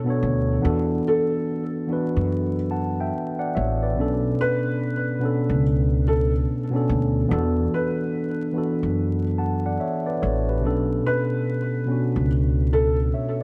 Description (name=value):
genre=lo-fi hip hop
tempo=72 BPM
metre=4/4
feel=swing 64% on 16ths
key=B minor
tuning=A4 = 440 Hz
part: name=mellow tine electric piano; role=accompaniment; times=0.0-13.4 s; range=B2 to A5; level=-26 LUFS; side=equal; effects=cassette tape
part: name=upright bass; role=bass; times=0.2-13.1 s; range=A1 to F#2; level=-26 LUFS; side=equal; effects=none
part: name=felt-muted upright piano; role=melody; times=1.1-13.0 s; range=A4 to B4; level=-30 LUFS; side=equal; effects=subtle chorus, tape echo
room=light reverb, small room ambience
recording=vinyl crackle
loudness=-23 LUFS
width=mono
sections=0.0-13.4 A section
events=none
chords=0.0 Bm9; 0.6 E7sus4; 4.0 Bm9; 7.3 E7sus4; 10.6 Bm9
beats=| 0.64 1.47 2.31 3.14 | 3.97 4.80 5.64 6.47 | 7.30 8.14 8.97 9.80 | 10.64 11.47 12.30 13.14